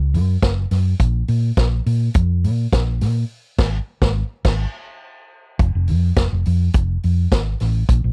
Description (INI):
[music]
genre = disco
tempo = 104 BPM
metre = 4/4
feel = straight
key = Bb minor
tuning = A4 = 440 Hz
[part]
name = hollow-body short-scale fingered electric bass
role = bass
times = 0.0-8.1 s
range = F1 to Bb2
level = -17 LUFS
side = equal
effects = none
[part]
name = vintage drum kit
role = drums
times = 0.1-8.0 s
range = crash cymbal, hi-hat, kick drum, snare drum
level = -17 LUFS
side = equal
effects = none
[sound]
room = little or no reverb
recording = dry, close 1970s-style studio recording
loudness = -16 LUFS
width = side -40 dB against mid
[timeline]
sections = 0.0-5.6 A section; 5.6-8.1 B section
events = band accent 3.3-5.6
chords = none